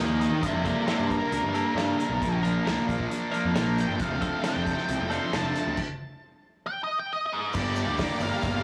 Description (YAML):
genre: indie rock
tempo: 135 BPM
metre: 4/4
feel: straight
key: G minor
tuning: A4 = 440 Hz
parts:
  - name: octave-fuzz lead guitar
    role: melody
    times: 0.0-8.6 s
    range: G4 to C6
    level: -33 LUFS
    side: equal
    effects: distortion, digital delay
  - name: cranked stack guitar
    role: riff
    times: 0.0-8.6 s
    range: F2 to G4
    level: -33 LUFS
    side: equal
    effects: overdrive
  - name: twelve-string electric guitar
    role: riff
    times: 0.0-5.6 s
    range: F3 to Bb4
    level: -33 LUFS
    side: equal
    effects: subtle chorus
  - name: fuzz picked electric bass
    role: bass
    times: 0.0-8.6 s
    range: F1 to Eb3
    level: -32 LUFS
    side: equal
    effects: overdrive, transformer saturation
  - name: unplugged drum kit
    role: drums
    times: 0.2-8.5 s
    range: crash cymbal, hi-hat, kick drum, snare drum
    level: -36 LUFS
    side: equal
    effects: none
  - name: tube shaker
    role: percussion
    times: 7.5-8.5 s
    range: none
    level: -52 LUFS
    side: equal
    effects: none
  - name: phased string machine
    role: sustained chords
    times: 7.9-8.6 s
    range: G4 to D6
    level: -40 LUFS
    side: equal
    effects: ensemble chorus, phaser
room: little or no reverb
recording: blown-out, overdriven recording, overdrive, small room ambience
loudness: -27 LUFS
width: mono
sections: 0.0-7.6 A section; 7.6-8.6 B section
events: lead electric guitar solo 0.0-7.6; stop 5.8-7.6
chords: 0.4 Gmadd9; 2.2 Bb; 4.0 F6; 5.8 N.C.; 7.6 Gm7